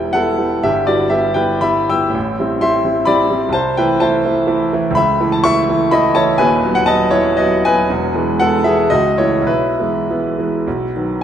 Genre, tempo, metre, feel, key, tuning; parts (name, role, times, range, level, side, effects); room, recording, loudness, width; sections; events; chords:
classical, romantic character piece for solo piano; 98-132 BPM; 3/4; rubato; E major from 5.0 s; A4 = 440 Hz
clear grand piano; solo; 0.0-11.2 s; D#1 to E6; -13 LUFS; equal
wet scoring stage reverb, RT60 2.0 s; dark, warm production; -13 LUFS; side -9 dB against mid
0.0-11.2 A section
0.0 Em; 0.6 Em/G; 2.2 Am7; 3.5 Am/C; 5.0 A/C#; 6.4 B/D#; 7.9 E; 8.9 A/C#; 9.5 E/B; 10.7 B